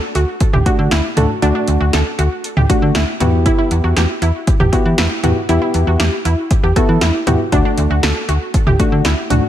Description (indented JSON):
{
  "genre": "synth-pop",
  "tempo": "118 BPM",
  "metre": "4/4",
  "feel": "straight",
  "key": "unclear",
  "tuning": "A4 = 439 Hz",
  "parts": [
    { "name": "wide unison pluck", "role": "arpeggios", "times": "0.0-9.5 s", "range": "D4 to A4", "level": "-21 LUFS", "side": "right 2 dB", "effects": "digital delay" },
    { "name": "slap-like FM bass", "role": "bass", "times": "0.2-9.4 s", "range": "D2 to E3", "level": "-15 LUFS", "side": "equal", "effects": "none" },
    { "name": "punchy analog drum machine", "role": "drums", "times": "0.2-9.4 s", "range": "hi-hat, kick drum, snare drum, toms", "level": "-17 LUFS", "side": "equal", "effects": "none" },
    { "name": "soft electric-piano-like synth keys", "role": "accompaniment", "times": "0.7-9.4 s", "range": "A3 to A4", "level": "-19 LUFS", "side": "left 2 dB", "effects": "chorus" }
  ],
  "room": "light reverb",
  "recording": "none",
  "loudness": "-12 LUFS",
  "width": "side -11 dB against mid",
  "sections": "0.0-9.5 A section",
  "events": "none",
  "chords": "0.0 D; 3.2 Em; 7.5 D",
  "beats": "0.41 0.91 | 1.42 1.93 2.44 2.95 | 3.46 3.96 4.47 4.98 | 5.49 6.00 6.51 7.02 | 7.52 8.03 8.54 9.05"
}